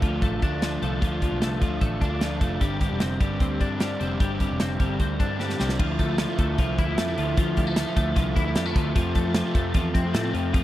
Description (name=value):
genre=jangly indie pop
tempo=151 BPM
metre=4/4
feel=straight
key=unclear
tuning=A4 = 441 Hz
part: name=crunchy overdriven guitar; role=accompaniment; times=0.0-10.6 s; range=F2 to F4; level=-29 LUFS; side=right 5 dB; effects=spring reverb
part: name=twelve-string electric guitar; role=arpeggios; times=0.0-10.6 s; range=F3 to E4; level=-28 LUFS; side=left 6 dB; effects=analog chorus
part: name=vintage muted picked electric bass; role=bass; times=0.0-10.6 s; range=E1 to A2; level=-29 LUFS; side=equal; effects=none
part: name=modern studio drum kit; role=drums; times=0.0-10.6 s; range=crash cymbal, hi-hat, kick drum, snare drum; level=-24 LUFS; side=equal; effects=none
room=little or no reverb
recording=dry, close 1970s-style studio recording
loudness=-22 LUFS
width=side -14 dB against mid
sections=0.0-5.8 A section; 5.8-10.6 B section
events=drum fill 5.4-5.8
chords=0.0 Dm; 2.6 Gsus4; 5.8 Dmadd9; 9.0 F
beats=0.22 0.62 | 1.02 1.42 1.82 2.21 | 2.61 3.01 3.41 3.81 | 4.20 4.60 5.00 5.39 | 5.79 6.19 6.58 6.98 | 7.38 7.77 8.17 8.56 | 8.96 9.36 9.75 10.15 | 10.54